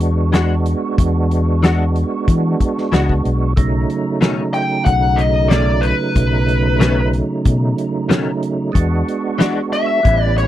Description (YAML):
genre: straight-eighth soul blues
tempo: 93 BPM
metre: 4/4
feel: straight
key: unclear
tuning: A4 = 440 Hz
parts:
  - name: percussive tonewheel organ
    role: accompaniment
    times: 0.0-10.5 s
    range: C#3 to F#4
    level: -20 LUFS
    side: right 3 dB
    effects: slow rotary speaker, overdrive, chorus vibrato
  - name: fingered electric bass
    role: bass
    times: 0.0-10.5 s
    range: A1 to E3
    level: -16 LUFS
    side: left 1 dB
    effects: none
  - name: warm soul drum kit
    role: drums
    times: 0.0-10.5 s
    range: hi-hat, kick drum, snare drum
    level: -16 LUFS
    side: equal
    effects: none
  - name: direct-recorded clean electric guitar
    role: stabs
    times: 0.3-9.6 s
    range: B2 to F#4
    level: -19 LUFS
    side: left 5 dB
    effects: ensemble chorus
  - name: smooth overdriven lead guitar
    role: melody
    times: 4.5-10.5 s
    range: B4 to G5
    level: -17 LUFS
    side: left 2 dB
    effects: slapback echo
room: little or no reverb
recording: dry, close 1970s-style studio recording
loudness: -14 LUFS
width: side -13 dB against mid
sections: 0.0-10.5 A section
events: none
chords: 0.0 E9; 3.6 B9; 8.8 E9